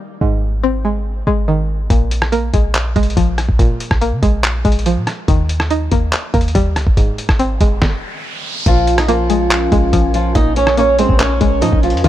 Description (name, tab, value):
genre	hip hop, trap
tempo	142 BPM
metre	4/4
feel	half-time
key	Bb minor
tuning	A4 = 440 Hz
part	string-like resonator pluck	accompaniment	0.0-12.1 s	Ab2 to Eb4	-19 LUFS	equal	chorus
part	clean 808-style bass	bass	0.2-12.1 s	Ab1 to Db3	-18 LUFS	equal	none
part	lo-fi sampler-style drum kit	drums	1.9-12.1 s	handclaps, hi-hat, kick drum, rim click, snare drum	-16 LUFS	equal	none
part	riser	sound effects	7.5-8.7 s	none	-28 LUFS	right 1 dB	none
part	flamenco guitar	melody	8.7-12.1 s	F3 to Eb5	-15 LUFS	right 1 dB	ping-pong delay
part	glassy FM pad	sustained chords	8.8-12.1 s	Db4 to Ab5	-23 LUFS	left 1 dB	ensemble chorus, built-in reverb
room	little or no reverb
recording	none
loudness	-12 LUFS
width	side -13 dB against mid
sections	0.0-8.7 A section; 8.7-12.1 B section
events	riser 7.5-8.7; stop 7.8-8.7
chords	0.2 Ab; 1.9 Bb7(no3); 5.3 Eb; 7.0 Ab; 8.7 Bbm7